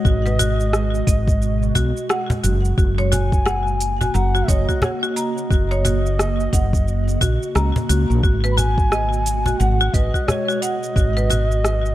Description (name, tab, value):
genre	organic downtempo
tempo	88 BPM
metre	4/4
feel	swing 60% on 16ths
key	G# minor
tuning	A4 = 440 Hz
part	bass bansuri	melody	0.0-11.9 s	C#5 to B5	-26 LUFS	equal	vintage 12-bit sampler grit, digital delay
part	ethereal airy pad	sustained chords	0.0-11.9 s	B2 to F#4	-28 LUFS	equal	ensemble chorus, built-in reverb, phaser, vintage 12-bit sampler grit, sidechain pumping
part	woody fretless electric bass	bass	0.0-11.9 s	F#1 to C#2	-19 LUFS	equal	ensemble chorus, sidechain pumping
part	electronic kick drum	drums	0.0-11.1 s	none	-19 LUFS	equal	none
part	marimba with hard mallets	arpeggios	0.1-11.4 s	F#4 to A#5	-25 LUFS	equal	digital delay
part	organic electronic drum kit	drums	0.1-11.9 s	hi-hat, rim click, shaker	-25 LUFS	equal	none
part	cajon	percussion	0.3-11.5 s	none	-24 LUFS	left 1 dB	none
room	little or no reverb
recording	none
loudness	-16 LUFS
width	side -14 dB against mid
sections	0.0-11.9 A section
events	none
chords	0.0 G#m7; 2.8 F#; 8.2 G#m7